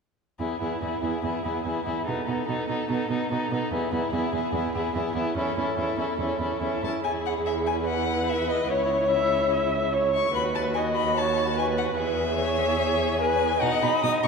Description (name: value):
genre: quick classical-period movement for string quartet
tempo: 146 BPM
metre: 4/4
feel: straight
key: E major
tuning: A4 = 440 Hz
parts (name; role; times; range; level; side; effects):
- rich violin; melody; 0.4-14.3 s; G#4 to D#6; -28 LUFS; left 6 dB; none
- rich violin; second line; 0.4-14.3 s; D#4 to G#4; -31 LUFS; left 1 dB; none
- warm viola; accompaniment; 0.4-14.3 s; B3 to E5; -28 LUFS; right 2 dB; none
- rich cello; bass; 0.4-14.3 s; C#2 to B2; -30 LUFS; right 4 dB; none
room: wet church reverb, RT60 3.0 s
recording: recorded in a church or concert hall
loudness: -23 LUFS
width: side -5 dB against mid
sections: 0.4-7.0 A section; 7.0-14.3 B section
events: none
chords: 0.4 E; 2.1 B7; 3.7 E; 5.4 A/E; 7.0 E; 8.7 C#m; 10.3 B/D#; 12.0 E; 13.6 B